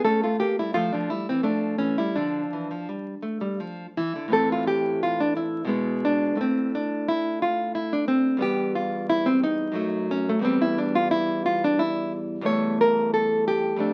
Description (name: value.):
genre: classical, baroque-style dance for nylon-string guitar.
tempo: 88 BPM.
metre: 3/4.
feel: rubato.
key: D minor.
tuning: A4 = 440 Hz.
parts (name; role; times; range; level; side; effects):
nylon-string guitar; solo; 0.0-13.9 s; E2 to C#5; -24 LUFS; equal; none.
room: moderate large studio reverb, RT60 0.9 s.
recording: very old 78 rpm record, vinyl crackle.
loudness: -25 LUFS.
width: mono.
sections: 0.0-4.3 A section; 4.3-13.9 A section.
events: none.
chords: 0.1 A; 0.7 Fmaj13; 2.1 Dm; 4.3 Am; 5.7 G#dim/B; 6.4 N.C.; 8.4 Em; 9.8 D#dim/F#; 10.5 Em; 12.5 A5/E.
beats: | 0.06 0.74 1.44 | 2.15 2.87 3.59 | 4.32 5.02 5.70 | 6.39 7.08 7.75 | 8.43 9.11 9.78 | 10.45 11.12 11.80 | 12.47 13.14 13.81.